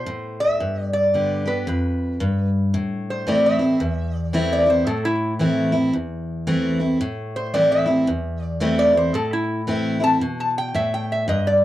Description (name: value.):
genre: country.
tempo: 112 BPM.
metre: 4/4.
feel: swing 61% on 8ths.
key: A minor.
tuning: A4 = 440 Hz.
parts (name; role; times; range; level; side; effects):
lap resonator guitar; melody; 0.0-11.6 s; E4 to A5; -21 LUFS; equal; slapback echo.
picked steel-string acoustic guitar; accompaniment; 0.0-11.6 s; E2 to G4; -21 LUFS; equal; none.
room: light reverb.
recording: dry, close 1970s-style studio recording.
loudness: -19 LUFS.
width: side -14 dB against mid.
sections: 0.0-2.7 A section; 2.7-11.6 B section.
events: resonator guitar played with a steel bar solo 2.7-11.6.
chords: 0.0 Am; 0.6 G; 2.7 Am.